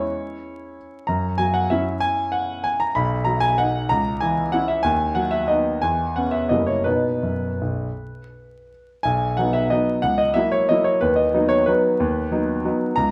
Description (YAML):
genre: classical, piano waltz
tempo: 157-203 BPM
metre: 3/4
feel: rubato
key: B major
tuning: A4 = 436 Hz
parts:
  - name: clear grand piano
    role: solo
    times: 0.0-13.1 s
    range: F#1 to B5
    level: -21 LUFS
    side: equal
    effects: none
room: wet large studio reverb, RT60 1.3 s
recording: vinyl crackle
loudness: -21 LUFS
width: mono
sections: 0.0-9.1 A section; 9.1-13.1 A section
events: none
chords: 0.0 C#m/E; 1.1 F#7; 3.0 B; 3.9 A#dim/C#; 4.8 B/D#; 5.8 C#m7/E; 6.5 F#7b9; 6.9 B; 10.0 F#7/C#; 11.0 B/D#